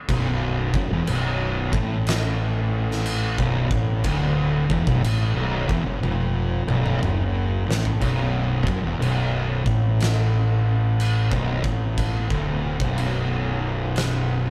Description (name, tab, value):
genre	stoner and doom metal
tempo	61 BPM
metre	4/4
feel	swing 66% on 8ths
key	B minor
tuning	A4 = 441 Hz
part	fuzz guitar	riff	0.1-14.5 s	B1 to A2	-25 LUFS	equal	distortion
part	fuzz fingered electric bass	bass	0.1-14.5 s	B0 to A1	-29 LUFS	equal	overdrive
part	oversized low-tuned drum kit	drums	0.1-14.3 s	crash cymbal, kick drum, snare drum, toms	-30 LUFS	equal	none
room	moderate studio reverb, RT60 0.5 s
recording	band playing live in one room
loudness	-23 LUFS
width	mono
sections	0.0-8.0 A section; 8.0-14.5 B section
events	drum fill 6.0-8.0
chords	0.0 Bm